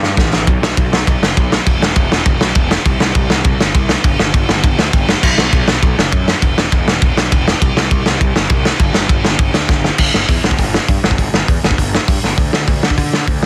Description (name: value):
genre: punk rock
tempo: 202 BPM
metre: 4/4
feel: straight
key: unclear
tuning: A4 = 440 Hz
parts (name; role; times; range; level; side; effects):
- fuzz picked electric bass; bass; 0.0-13.5 s; E1 to D3; -21 LUFS; equal; overdrive
- loose indie drum kit; drums; 0.0-13.5 s; crash cymbal, hi-hat, kick drum, ride cymbal, snare drum; -15 LUFS; equal; none
room: little or no reverb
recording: dense, heavily limited modern master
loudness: -14 LUFS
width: mono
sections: 0.5-10.0 A section; 10.0-12.4 B section; 12.4-13.5 C section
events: drum fill 0.0-0.5, 9.7, 12.2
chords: none